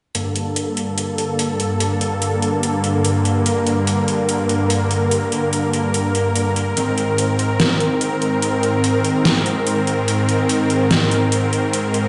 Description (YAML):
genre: heavy wobble dubstep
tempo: 145 BPM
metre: 4/4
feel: half-time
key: unclear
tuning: A4 = 441 Hz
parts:
  - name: supersaw chords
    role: sustained chords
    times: 0.1-12.1 s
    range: G2 to Bb4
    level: -19 LUFS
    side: equal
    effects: low-pass filter
  - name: dubstep drum kit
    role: drums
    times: 0.1-12.0 s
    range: hi-hat, snare drum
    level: -24 LUFS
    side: equal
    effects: overdrive
room: moderate digital room reverb, RT60 1.4 s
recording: played on a big sound system in a bare room, stone room reverb, nothing above 11.0 kHz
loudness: -19 LUFS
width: mono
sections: 0.1-12.1 A section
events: filter sweep on supersaw synth 0.1-12.1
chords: 0.1 Gmadd9; 6.8 Abadd9